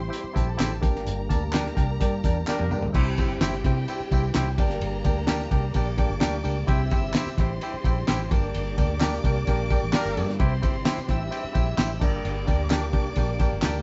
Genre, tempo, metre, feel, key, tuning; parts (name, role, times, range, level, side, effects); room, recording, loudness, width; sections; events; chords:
uptempo 1960s-style soul; 129 BPM; 4/4; straight; G dorian; A4 = 440 Hz
warm studio string section; second line; 0.0-13.8 s; G4 to E6; -40 LUFS; equal
percussive tonewheel organ; sustained chords; 0.0-13.8 s; G3 to G4; -38 LUFS; equal; overdrive, chorus vibrato, slow rotary speaker
vintage muted fingered electric bass; bass; 0.0-13.8 s; G1 to C3; -31 LUFS; equal
barky tine electric piano; accompaniment; 0.1-13.8 s; G2 to A5; -33 LUFS; equal; overdrive
cloth-damped thuddy drum kit; drums; 0.1-13.7 s; crash cymbal, hi-hat, kick drum, ride cymbal, snare drum, toms; -28 LUFS; equal
tambourine and handclaps; percussion; 0.1-13.7 s; -41 LUFS; equal
dark horn section; second line; 1.8-2.9, 9.2-10.4 s; G3 to Bb4; -37 LUFS; equal
light reverb; band playing live in one room, nothing above 7.8 kHz; -25 LUFS; mono
0.0-2.9 A section; 2.9-13.8 A section
band accent 1.1-2.9, 8.5-10.4; drum fill 2.5-2.9
0.0 C; 0.8 Gm; 2.9 C; 4.6 Gm; 6.7 C; 8.3 Gm; 10.4 C; 12.0 Gm